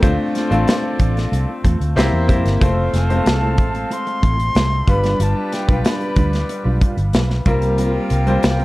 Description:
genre	polished 1980s jazz-funk pop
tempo	93 BPM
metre	4/4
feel	straight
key	F major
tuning	A4 = 441 Hz
part	warm horn section	second line	0.0-8.6 s	F4 to F5	-28 LUFS	right 1 dB	none
part	bright concert grand piano	accompaniment	0.0-8.6 s	G3 to C5	-21 LUFS	left 1 dB	lush chorus
part	mellow electric guitar	riff	0.0-8.6 s	G3 to C5	-27 LUFS	right 3 dB	ensemble chorus
part	vintage muted fingered electric bass	bass	0.0-8.6 s	F1 to F2	-18 LUFS	equal	none
part	modern studio drum kit	drums	0.0-8.6 s	hi-hat, kick drum, snare drum	-18 LUFS	equal	none
part	silver concert flute	melody	3.0-8.6 s	G5 to C6	-25 LUFS	left 1 dB	none
room	little or no reverb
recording	cassette tape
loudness	-15 LUFS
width	side -19 dB against mid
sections	0.0-8.6 A section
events	none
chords	0.0 Dm7; 2.0 C7; 2.6 Fmaj7; 4.9 G7; 7.5 C7sus4

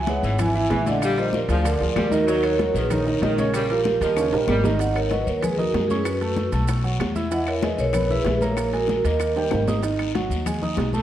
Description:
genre	latin, salsa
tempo	191 BPM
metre	4/4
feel	straight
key	G# minor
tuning	A4 = 440 Hz
part	vibraphone with medium hard mallets	melody	0.0-9.6 s	E4 to G#5	-24 LUFS	right 2 dB	none
part	warm concert grand piano	accompaniment	0.0-11.0 s	C#3 to E6	-27 LUFS	right 3 dB	none
part	upright bass	bass	0.0-11.0 s	G#1 to F#2	-26 LUFS	left 1 dB	none
part	bongos	percussion	0.1-11.0 s	none	-35 LUFS	left 8 dB	none
part	congas	percussion	0.1-11.0 s	none	-29 LUFS	left 3 dB	none
part	guiro	percussion	0.1-11.0 s	none	-39 LUFS	left 7 dB	none
part	maracas	percussion	0.1-11.0 s	none	-44 LUFS	right 7 dB	none
part	timbales	percussion	0.1-10.9 s	none	-32 LUFS	right 4 dB	none
part	clear saxophone section	second line	0.2-4.7 s	D#3 to G3	-29 LUFS	left 2 dB	none
part	claves	percussion	0.4-10.6 s	none	-40 LUFS	left 7 dB	none
room	moderate recital hall reverb, RT60 1.3 s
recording	worn, warbling old tape, cassette tape, warbly pitch drift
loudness	-20 LUFS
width	side -11 dB against mid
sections	0.0-4.8 A section; 4.8-11.0 B section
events	drum fill 4.2-4.8, 9.4-9.8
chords	0.0 C#m7; 1.0 A#7; 2.3 D#m7; 3.5 A#m; 4.2 D#7; 4.8 G#7(no3); 6.1 F#m; 6.7 B5; 7.3 E; 8.6 F#69/A#; 9.2 D#; 9.8 G#m7

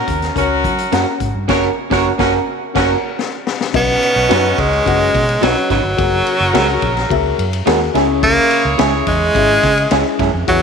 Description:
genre	uptempo 1960s-style soul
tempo	107 BPM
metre	4/4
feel	straight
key	B major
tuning	A4 = 441 Hz
part	warm horn section	second line	0.0-10.6 s	B3 to C#5	-22 LUFS	right 1 dB	none
part	dark upright piano	accompaniment	0.0-10.6 s	B2 to F#5	-20 LUFS	left 12 dB	none
part	vintage muted fingered electric bass	bass	0.1-10.6 s	F#1 to F#3	-21 LUFS	right 1 dB	none
part	raw garage drum kit	drums	0.1-10.6 s	crash cymbal, hi-hat, kick drum, ride cymbal, snare drum	-22 LUFS	left 4 dB	none
part	electric guitar through a small old amp	stabs	0.9-10.3 s	F#3 to B4	-21 LUFS	right 12 dB	spring reverb
part	bright tenor saxophone	melody	3.8-10.6 s	F#3 to B3	-15 LUFS	right 1 dB	none
room	moderate echo chamber reverb, RT60 2.6 s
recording	1960s-style stereo with parts hard left and right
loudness	-12 LUFS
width	side -6 dB against mid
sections	0.0-3.7 A section; 3.7-10.6 B section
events	band accent 1.5-3.7; drum fill 2.6-3.7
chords	0.0 F#; 3.7 Badd9; 6.0 F#add9; 8.0 C#m

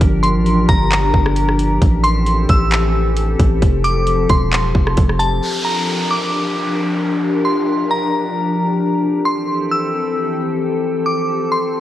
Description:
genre	hip hop, atmospheric cloud-rap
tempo	133 BPM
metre	4/4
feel	half-time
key	G dorian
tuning	A4 = 440 Hz
part	glassy FM pad	sustained chords	0.0-11.8 s	E3 to Bb4	-18 LUFS	left 2 dB	ensemble chorus, built-in reverb, sidechain pumping
part	long sustained 808-style bass	bass	0.0-5.4 s	E1 to A1	-17 LUFS	equal	none
part	trap drum kit	drums	0.0-5.3 s	handclaps, hi-hat, kick drum, rim click	-17 LUFS	equal	none
part	glassy synth bell	melody	0.2-11.8 s	A5 to E6	-20 LUFS	equal	chorus, tremolo, digital delay
part	downlifter	sound effects	5.4-9.0 s	none	-26 LUFS	equal	none
room	moderate recital hall reverb, RT60 1.6 s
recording	worn, warbling old tape, cassette tape, warbly pitch drift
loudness	-14 LUFS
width	side -13 dB against mid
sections	0.0-5.4 A section; 5.4-11.8 B section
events	none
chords	0.0 Gm7; 1.8 Am7; 3.6 Fadd9; 5.4 Gm7; 9.0 Am7; 10.8 Fadd9

